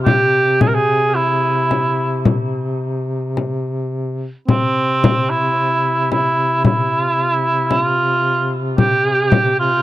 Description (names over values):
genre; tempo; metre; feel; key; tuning
caucasian folk, Caucasian lament; 55 BPM; 4/4; rubato; C major; A4 = 440 Hz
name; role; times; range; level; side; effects
warm cor anglais; melody; 0.0-9.8 s; C4 to Bb4; -16 LUFS; right 2 dB; tape echo
warm duduk; drone; 0.0-9.8 s; C3; -21 LUFS; left 1 dB; stereo widening
frame drum; percussion; 0.1-9.6 s; none; -17 LUFS; left 3 dB; none
room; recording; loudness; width
little or no reverb; dry, close 1970s-style studio recording; -14 LUFS; side -15 dB against mid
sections
0.0-9.8 A section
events
none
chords
none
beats
| 0.06 1.16 2.25 3.36 | 4.49 5.58 6.65 7.71 | 8.79